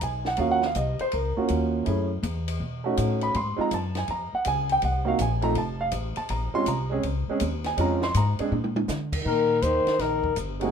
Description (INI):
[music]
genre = jazz, small-group swing and bop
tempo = 162 BPM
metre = 4/4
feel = swing 65% on 8ths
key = unclear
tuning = A4 = 438 Hz
[part]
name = warm concert grand piano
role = accompaniment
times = 0.0-10.7 s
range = Ab3 to C6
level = -25 LUFS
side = right 3 dB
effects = none
[part]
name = upright bass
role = bass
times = 0.0-10.7 s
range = F1 to D3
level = -28 LUFS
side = left 1 dB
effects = none
[part]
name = compact cocktail drum kit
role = drums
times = 0.0-10.7 s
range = crash cymbal, hi-hat, kick drum, ride cymbal, snare drum, toms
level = -34 LUFS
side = equal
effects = none
[part]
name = breathy trombone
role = second line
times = 9.2-10.7 s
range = C3 to Eb3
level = -28 LUFS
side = right 2 dB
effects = none
[part]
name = warm flugelhorn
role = melody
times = 9.3-10.7 s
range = Ab4 to C5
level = -24 LUFS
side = left 5 dB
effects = none
[sound]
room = moderate club reverb, RT60 0.5 s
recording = minimal, uncompressed stereo recording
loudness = -23 LUFS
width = side -7 dB against mid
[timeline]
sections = 0.0-9.3 A section; 9.3-10.7 B section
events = drum fill 8.5-8.9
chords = 0.4 Ebm7; 1.9 Gbm7; 2.6 B9; 3.3 Dbmaj7; 4.8 Cm7b5; 5.6 F; 6.3 Bbm7; 8.5 Bb; 9.3 Eb6